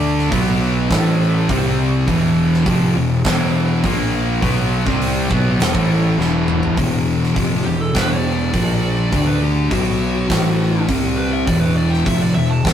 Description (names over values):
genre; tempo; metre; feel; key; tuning
stoner and doom metal; 102 BPM; 4/4; straight; E minor; A4 = 441 Hz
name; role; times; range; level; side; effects
thick fuzz guitar; riff; 0.0-12.7 s; E2 to D4; -19 LUFS; left 3 dB; distortion
thick fuzz guitar; riff; 0.0-12.7 s; E2 to D4; -23 LUFS; right 6 dB; distortion
tight distorted guitar; riff; 0.0-6.8 s; E2 to D4; -24 LUFS; right 2 dB; distortion
fuzz picked electric bass; bass; 0.0-12.7 s; E1 to D2; -22 LUFS; right 1 dB; overdrive
big rock drum kit; drums; 0.2-12.7 s; hi-hat, kick drum, snare drum, toms; -22 LUFS; right 1 dB; none
fuzz lead guitar; melody; 7.6-12.7 s; F#4 to A5; -25 LUFS; equal; distortion, ping-pong delay
room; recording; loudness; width
light reverb; rough rehearsal-room recording, warm saturation; -15 LUFS; side -9 dB against mid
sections
0.0-6.8 A section; 6.8-12.7 B section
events
drum fill 6.2-6.8; lead electric guitar solo 6.8-12.7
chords
0.3 B5; 0.9 A5; 1.5 C5; 2.1 E5; 3.8 A#5; 4.4 Em; 6.8 E5; 8.5 A#5; 9.1 D5; 9.7 B5; 10.3 A5; 10.9 C5; 11.5 E5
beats
0.32 0.91 1.49 | 2.08 2.67 3.25 3.84 | 4.43 5.01 5.60 6.19 | 6.77 7.36 7.95 8.53 | 9.12 9.71 10.30 10.88 | 11.47 12.06 12.65